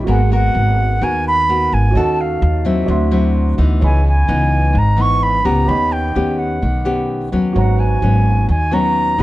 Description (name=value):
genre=bossa nova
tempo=128 BPM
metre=4/4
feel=straight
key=G# minor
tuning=A4 = 440 Hz
part: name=nylon-string guitar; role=accompaniment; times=0.0-9.2 s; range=G#2 to A#4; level=-19 LUFS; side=left 2 dB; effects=none
part: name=warm concert grand piano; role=accompaniment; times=0.0-9.2 s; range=A#3 to C6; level=-26 LUFS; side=right 6 dB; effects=none
part: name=upright bass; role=bass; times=0.0-9.2 s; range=G#1 to D#2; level=-16 LUFS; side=equal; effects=none
part: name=concert flute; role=melody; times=0.1-9.2 s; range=E5 to C#6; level=-18 LUFS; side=right 1 dB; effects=none
room=light reverb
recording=dark, warm production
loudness=-13 LUFS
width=side -16 dB against mid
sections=0.1-9.2 A section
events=none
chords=0.1 G#m9; 1.9 D#m7b5; 2.9 D9; 3.8 C#m9; 5.7 D#7alt; 7.6 G#m11